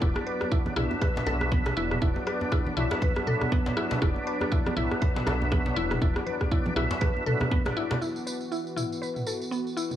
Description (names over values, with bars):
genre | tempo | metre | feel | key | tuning
afro house | 120 BPM | 4/4 | swing 58% on 16ths | unclear | A4 = 442 Hz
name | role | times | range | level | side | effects
warm analog pad | sustained chords | 0.0-10.0 s | E3 to F#4 | -35 LUFS | right 1 dB | chorus, sidechain pumping
mallet-like synth pluck | arpeggios | 0.0-9.9 s | B3 to B4 | -33 LUFS | left 1 dB | chorus, sidechain pumping, analog delay
tonewheel organ | stabs | 0.0-8.0 s | D4 to E5 | -32 LUFS | equal | overdrive, chorus vibrato, slow rotary speaker, sidechain pumping, analog delay
woody FM bass | bass | 0.0-6.9 s | E1 to B1 | -31 LUFS | equal | sidechain pumping
electronic kick drum | drums | 0.0-7.6 s | none | -26 LUFS | equal | none
house drum kit | drums | 0.2-10.0 s | rim click, toms | -33 LUFS | right 1 dB | low-pass filter on snare, low-pass filter on toms
djembe | percussion | 0.2-8.0 s | none | -36 LUFS | left 1 dB | none
congas | percussion | 0.7-8.0 s | none | -34 LUFS | right 2 dB | none
tambourine | percussion | 8.0-10.0 s | none | -39 LUFS | right 2 dB | none
room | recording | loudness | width
little or no reverb | dry, gritty hardware recording, cassette tape, small room ambience | -25 LUFS | side -11 dB against mid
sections
0.0-8.0 A section; 8.0-10.0 B section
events
band accent 7.6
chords
0.0 Bm/E